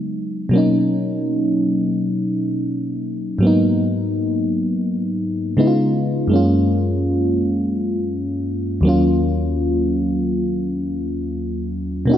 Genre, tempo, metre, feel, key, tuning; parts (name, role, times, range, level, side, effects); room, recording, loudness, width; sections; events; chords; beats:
R&B; 83 BPM; 4/4; swing 58% on 16ths; Eb minor; A4 = 441 Hz
mellow FM electric piano; solo; 0.0-12.2 s; Eb2 to F#4; -17 LUFS; equal; chorus
moderate lush hall reverb, RT60 2.3 s; -17 LUFS; side -10 dB against mid
0.5-12.1 A section
0.0 Db9sus4; 0.5 Bmaj9; 3.4 Abm9; 5.6 Db7; 6.3 Gbmaj9; 8.8 Ebm9
| 0.53 1.25 1.97 2.70 | 3.42 4.14 4.86 5.59 | 6.31 7.03 7.76 8.48 | 9.20 9.93 10.65 11.37 | 12.09